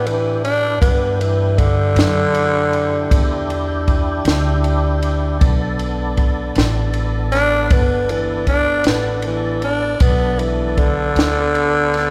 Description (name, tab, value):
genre	slow blues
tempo	52 BPM (dotted quarters)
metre	12/8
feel	straight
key	B minor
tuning	A4 = 440 Hz
part	growling tenor saxophone	melody	0.0-12.1 s	D3 to D4	-20 LUFS	equal	none
part	tonewheel organ	sustained chords	0.0-12.1 s	B3 to A4	-27 LUFS	equal	overdrive, chorus vibrato, slow rotary speaker
part	upright bass	bass	0.0-12.1 s	G1 to A2	-23 LUFS	equal	none
part	compact cocktail drum kit	drums	0.1-12.1 s	kick drum, ride cymbal, snare drum	-21 LUFS	equal	none
room	moderate concert hall reverb, RT60 1.9 s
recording	recorded in a church or concert hall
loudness	-17 LUFS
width	mono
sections	0.0-12.1 A section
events	tenor saxophone solo 0.0-12.1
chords	0.0 Em7; 5.4 Bm7